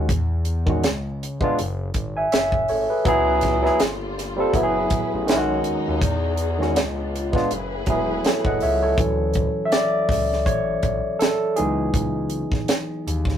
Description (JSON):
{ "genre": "R&B, neo-soul", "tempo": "81 BPM", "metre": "4/4", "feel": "swing 56% on 16ths", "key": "unclear", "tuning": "A4 = 439 Hz", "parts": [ { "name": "barky tine electric piano", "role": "accompaniment", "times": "0.0-13.4 s", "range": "D#3 to G#5", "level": "-21 LUFS", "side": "equal", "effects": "overdrive" }, { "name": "smooth synth bass", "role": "bass", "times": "0.0-13.4 s", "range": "E1 to E2", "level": "-26 LUFS", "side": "left 1 dB", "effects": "none" }, { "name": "tight funk drum kit", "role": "drums", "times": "0.1-13.4 s", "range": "hi-hat, kick drum, snare drum", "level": "-24 LUFS", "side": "right 1 dB", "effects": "none" }, { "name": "warm studio string section", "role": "sustained chords", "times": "3.0-9.0 s", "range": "C#3 to D#5", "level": "-31 LUFS", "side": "left 5 dB", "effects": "none" } ], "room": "light reverb", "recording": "rough rehearsal-room recording", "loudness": "-19 LUFS", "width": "side -9 dB against mid", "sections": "0.0-9.0 A section; 9.0-13.4 B section", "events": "tine electric piano solo 9.0-13.4", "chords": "0.1 Emaj9; 0.8 C#7b9; 1.6 F#sus2; 3.1 C#m9; 3.8 Gm11; 4.5 F#m11; 5.3 B; 6.0 Emaj9; 6.8 C#7b9; 7.5 F#m11; 9.0 Dmaj9; 11.6 C#m11", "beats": "| 0.09 0.83 1.57 2.31 | 3.05 3.79 4.54 5.28 | 6.02 6.76 7.50 8.24 | 8.98 9.72 10.46 11.20 | 11.94 12.68" }